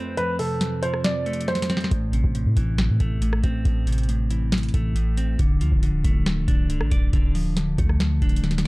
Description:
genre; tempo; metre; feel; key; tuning
hip hop, trap; 138 BPM; 4/4; half-time; A minor; A4 = 440 Hz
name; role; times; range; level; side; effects
warm baby grand piano; melody; 0.0-1.9 s; A4 to D5; -27 LUFS; right 1 dB; tape echo
clean electric guitar; accompaniment; 0.0-8.7 s; F2 to D5; -26 LUFS; equal; none
booming analog drum machine; drums; 0.2-8.7 s; hi-hat, kick drum, rim click, snare drum; -23 LUFS; equal; none
warm 808-style bass; bass; 1.9-8.7 s; C1 to A2; -23 LUFS; equal; none
room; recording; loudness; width
digital ambience; dark, warm production; -20 LUFS; side -22 dB against mid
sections
0.0-8.7 A section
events
break 0.0-1.9; drum fill 1.5-1.9, 8.4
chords
0.0 F; 1.9 Am; 5.4 Dm

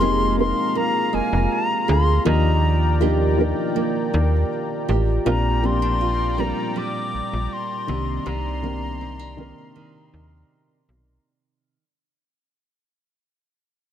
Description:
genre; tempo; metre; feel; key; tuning
contemporary R&B; 80 BPM; 4/4; straight; Bb mixolydian; A4 = 440 Hz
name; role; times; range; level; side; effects
hollow silver concert flute; melody; 0.0-10.5 s; Ab5 to D6; -25 LUFS; left 2 dB; digital delay
felt-muted upright piano; accompaniment; 0.0-11.3 s; Eb3 to Bb4; -26 LUFS; left 2 dB; none
warm analog pad; sustained chords; 0.0-11.2 s; Eb3 to C6; -30 LUFS; left 3 dB; chorus
nylon-string guitar; arpeggios; 0.0-11.8 s; Bb2 to Ab4; -27 LUFS; right 9 dB; digital delay
slap-like FM bass; bass; 0.0-11.2 s; F1 to Eb2; -21 LUFS; equal; none
soft round pluck; texture; 1.1-2.4 s; Eb5 to Bb5; -37 LUFS; left 3 dB; none
room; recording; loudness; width
small room ambience; none; -19 LUFS; side -10 dB against mid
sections
0.0-5.3 A section; 5.3-11.3 B section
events
fade-out 5.3-11.3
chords
0.0 Fm11; 2.3 Ebmaj7; 5.3 Bb6; 7.9 Cm9

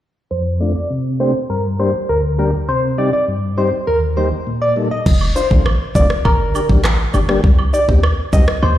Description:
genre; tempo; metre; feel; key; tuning
dancehall; 101 BPM; 4/4; straight; unclear; A4 = 440 Hz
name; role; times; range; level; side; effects
soft struck synth lead; melody; 0.3-8.8 s; Bb4 to Eb5; -19 LUFS; equal; chorus, low-pass filter, ping-pong delay
mellow tonewheel organ; accompaniment; 0.3-8.5 s; D2 to A4; -19 LUFS; left 1 dB; overdrive, fast rotary speaker, sidechain pumping, low-pass filter
short 808-style bass; bass; 5.1-8.8 s; F1 to Eb2; -16 LUFS; equal; none
island pop drum kit; drums; 5.1-8.6 s; crash cymbal, handclaps, kick drum, rim click; -15 LUFS; equal; none
woodblock and cabasa; percussion; 5.2-8.8 s; none; -28 LUFS; right 6 dB; none
room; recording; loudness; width
light reverb, digital ambience; played on a big sound system in a bare room, stone room reverb; -14 LUFS; side -13 dB against mid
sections
0.3-5.1 A section; 5.1-8.8 B section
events
filter sweep 0.3-5.1; hi-hats muted 5.1-8.8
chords
0.3 F6; 1.5 Gm; 2.7 Cm; 3.9 Eb; 5.1 F6; 6.3 Gm; 7.4 Cm

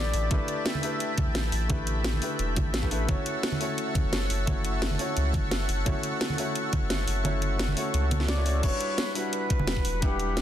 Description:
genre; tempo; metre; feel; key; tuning
liquid drum and bass; 173 BPM; 4/4; straight; unclear; A4 = 440 Hz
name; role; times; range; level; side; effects
mellow flugelhorn; melody; 0.0-1.4, 8.3-10.4 s; G4 to E5; -33 LUFS; left 1 dB; ping-pong delay
clear grand piano; accompaniment; 0.0-10.4 s; G3 to F#5; -33 LUFS; left 1 dB; ping-pong delay
lush unison pad; sustained chords; 0.0-10.4 s; E5 to C#6; -35 LUFS; equal; chorus, sidechain pumping
warm sub bass; bass; 0.0-10.4 s; E1 to C#2; -28 LUFS; equal; none
drum and bass drum kit; drums; 0.1-10.4 s; crash cymbal, hi-hat, snare drum; -32 LUFS; equal; studio reverb
electronic kick drum; drums; 0.3-10.1 s; none; -28 LUFS; equal; studio reverb
congas and bongos; percussion; 0.3-9.7 s; none; -35 LUFS; right 3 dB; none
room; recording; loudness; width
light reverb, small room reverb; dense, heavily limited modern master; -25 LUFS; side -11 dB against mid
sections
0.0-8.6 A section; 8.6-10.4 A section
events
drop 0.0-8.6, 8.6-10.4; kick drops out 7.2-8.6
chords
0.0 A7sus4; 3.1 F#m7; 8.6 Em7

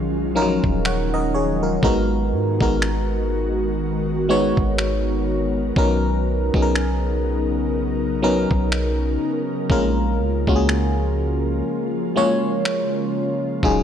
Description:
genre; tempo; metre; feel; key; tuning
contemporary R&B; 61 BPM; 4/4; swing 58% on 16ths; unclear; A4 = 441 Hz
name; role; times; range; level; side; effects
FM electric piano; accompaniment; 0.0-13.8 s; F3 to Gb5; -21 LUFS; left 1 dB; chorus
ethereal airy pad; sustained chords; 0.0-13.8 s; C#3 to Bb4; -27 LUFS; right 1 dB; ensemble chorus, built-in reverb
warm 808-style bass; bass; 0.0-13.8 s; Eb1 to Ab2; -23 LUFS; equal; none
dusty soul sampler-style drum kit; drums; 0.6-13.8 s; finger snaps, kick drum; -24 LUFS; equal; none
room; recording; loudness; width
light reverb; dry, gritty hardware recording; -18 LUFS; side -9 dB against mid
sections
0.0-13.8 A section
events
break 0.0-13.6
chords
0.0 Ebm11; 1.8 Abm9; 5.8 Bmaj9; 9.7 Bbm7

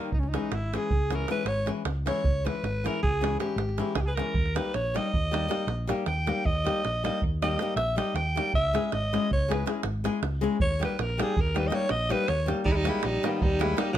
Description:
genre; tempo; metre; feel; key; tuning
balkan folk, Balkan wedding band; 316 BPM (eighths); 11/8; straight; Eb phrygian dominant; A4 = 439 Hz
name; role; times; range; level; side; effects
flamenco guitar; accompaniment; 0.0-13.9 s; Fb3 to Ab4; -31 LUFS; left 4 dB; none
growling alto saxophone; melody; 0.1-14.0 s; Eb3 to G5; -29 LUFS; equal; slapback echo
hollow-body short-scale fingered electric bass; bass; 0.1-14.0 s; Ab1 to Eb2; -30 LUFS; equal; none
davul; percussion; 0.1-14.0 s; none; -31 LUFS; right 3 dB; none
clear violin; second line; 12.7-14.0 s; Cb4 to Fb4; -33 LUFS; right 2 dB; none
room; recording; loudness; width
light reverb; none; -25 LUFS; side -11 dB against mid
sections
0.0-12.7 A section; 12.7-14.0 B section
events
speeding up 0.0-14.0; alto saxophone solo 0.0-12.7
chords
0.1 Dbm; 4.4 Eb; 8.5 Dbm; 10.6 Eb

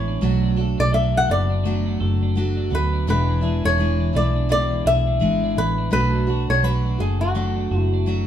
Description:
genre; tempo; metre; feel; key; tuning
pop; 84 BPM; 4/4; swing 60% on 16ths; unclear; A4 = 442 Hz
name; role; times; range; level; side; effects
flamenco guitar; melody; 0.0-8.0 s; F#4 to F#5; -23 LUFS; left 2 dB; none
picked steel-string acoustic guitar; accompaniment; 0.0-8.3 s; E2 to F#4; -25 LUFS; left 1 dB; none
twelve-string electric guitar; arpeggios; 0.0-8.3 s; F#3 to A4; -30 LUFS; right 7 dB; none
vintage muted fingered electric bass; bass; 0.0-8.3 s; E1 to D2; -21 LUFS; equal; none
room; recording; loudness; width
moderate studio reverb, RT60 0.7 s; band playing live in one room; -18 LUFS; side -10 dB against mid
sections
0.0-8.3 A section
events
none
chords
0.2 Bm7; 3.1 E7; 5.9 Bm7

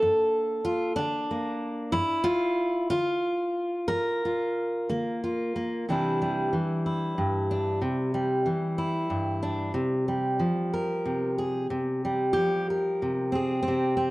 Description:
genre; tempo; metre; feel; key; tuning
folk, solo fingerstyle acoustic guitar; 62 BPM (dotted quarters); 6/8; rubato; C mixolydian; A4 = 440 Hz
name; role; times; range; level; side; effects
fingerpicked steel-string acoustic guitar; solo; 0.0-14.1 s; G2 to Bb4; -25 LUFS; equal; none
room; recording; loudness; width
wet spring reverb, RT60 1.8 s, studio reverb; none; -25 LUFS; side -19 dB against mid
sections
0.0-5.9 A section; 5.9-13.7 B section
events
none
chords
0.0 Gm7; 5.9 Cadd9; 9.8 Fmadd9/C

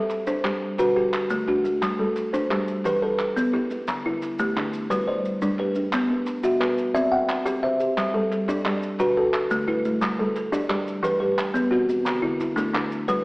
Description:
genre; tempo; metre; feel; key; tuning
southern african traditional, mbira-style interlocking cycle; 117 BPM (dotted quarters); 12/8; straight; G major; A4 = 440 Hz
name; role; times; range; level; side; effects
buzzing kalimba; arpeggios; 0.0-13.2 s; D3 to F#5; -23 LUFS; equal; none
buzzing kalimba; arpeggios; 0.0-13.2 s; D3 to G5; -27 LUFS; right 1 dB; none
group handclap; percussion; 0.1-13.2 s; none; -32 LUFS; right 1 dB; none
maracas; percussion; 0.1-13.2 s; none; -46 LUFS; right 2 dB; none
room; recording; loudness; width
wet recital hall reverb, RT60 1.2 s; AM radio sound; -21 LUFS; side -24 dB against mid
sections
0.0-8.0 A section; 8.0-13.2 B section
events
none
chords
0.0 G5; 0.8 D; 1.8 G5; 2.8 Em; 3.9 D5; 4.9 G; 5.9 Bm; 7.0 C; 8.0 G5; 9.0 D; 10.0 G; 11.0 Em; 12.1 D

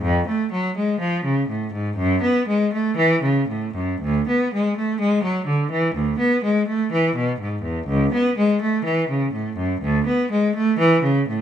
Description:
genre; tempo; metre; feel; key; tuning
classical, baroque-style suite movement for unaccompanied cello; 62 BPM; 4/4; rubato; unclear; A4 = 440 Hz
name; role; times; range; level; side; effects
clear cello; solo; 0.0-11.4 s; C#2 to B3; -18 LUFS; equal; none
room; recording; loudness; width
light reverb; minimal, uncompressed stereo recording; -18 LUFS; side -9 dB against mid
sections
0.0-11.4 A section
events
none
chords
none

